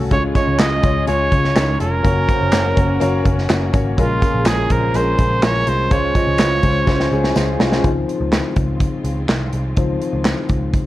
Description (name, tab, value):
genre	piano-driven pop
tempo	124 BPM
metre	4/4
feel	straight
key	Db major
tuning	A4 = 440 Hz
part	warm concert grand piano	accompaniment	0.0-10.9 s	A2 to Eb5	-21 LUFS	left 3 dB	none
part	rich studio string section	sustained chords	0.0-10.9 s	Db3 to Ab4	-32 LUFS	left 1 dB	none
part	vintage muted picked electric bass	bass	0.0-10.8 s	F1 to Db2	-21 LUFS	equal	none
part	clear trumpet	melody	0.1-7.6 s	F4 to Eb5	-21 LUFS	right 2 dB	none
part	warm French horn section	second line	0.1-7.6 s	Db3 to Ab4	-27 LUFS	right 4 dB	none
part	modern studio drum kit	drums	0.1-10.8 s	handclaps, hi-hat, kick drum, snare drum	-19 LUFS	equal	none
part	tambourine	percussion	0.4-7.7 s	none	-42 LUFS	left 8 dB	none
room	light reverb, small room ambience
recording	cassette tape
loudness	-14 LUFS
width	side -15 dB against mid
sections	0.0-7.8 A section; 7.8-10.9 B section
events	drum fill 6.9-7.8; grand piano solo 7.8-10.9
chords	0.1 Db; 2.0 Gb; 4.0 Bbm7; 5.9 Dbmaj7